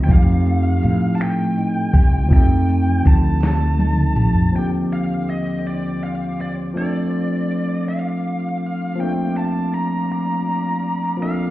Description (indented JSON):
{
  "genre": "slow six-eight R&B",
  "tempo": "54 BPM (dotted quarters)",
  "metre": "6/8",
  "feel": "straight",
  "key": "unclear",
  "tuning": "A4 = 443 Hz",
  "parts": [
    { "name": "high-gain lead guitar", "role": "melody", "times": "0.0-11.5 s", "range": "D5 to Bb5", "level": "-27 LUFS", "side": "equal", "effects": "distortion, digital delay" },
    { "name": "clean electric guitar", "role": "second line", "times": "0.0-5.1 s", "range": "F3 to G4", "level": "-26 LUFS", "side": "right 5 dB", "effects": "none" },
    { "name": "barky tine electric piano", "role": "accompaniment", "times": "0.0-11.5 s", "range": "Eb2 to A4", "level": "-22 LUFS", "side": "left 1 dB", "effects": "overdrive, auto-pan" },
    { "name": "mellow fretless electric bass", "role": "bass", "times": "0.0-4.5 s", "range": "Bb1 to A2", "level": "-17 LUFS", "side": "equal", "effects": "none" },
    { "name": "smooth R&B drum kit", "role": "drums", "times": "0.1-4.5 s", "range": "finger snaps, hi-hat, kick drum, snare drum, toms", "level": "-15 LUFS", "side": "equal", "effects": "none" },
    { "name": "warm studio string section", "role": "sustained chords", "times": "4.5-11.5 s", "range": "D3 to D6", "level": "-36 LUFS", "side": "right 3 dB", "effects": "none" }
  ],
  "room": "little or no reverb",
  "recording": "heard muffled through a wall, stone room reverb, EQ",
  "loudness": "-17 LUFS",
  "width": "side -16 dB against mid",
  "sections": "0.0-4.5 A section; 4.5-11.5 B section",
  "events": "drum fill 3.4-4.5",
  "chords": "0.1 F9; 4.5 Ebmaj13; 6.8 Dm7; 9.0 Bbmaj7"
}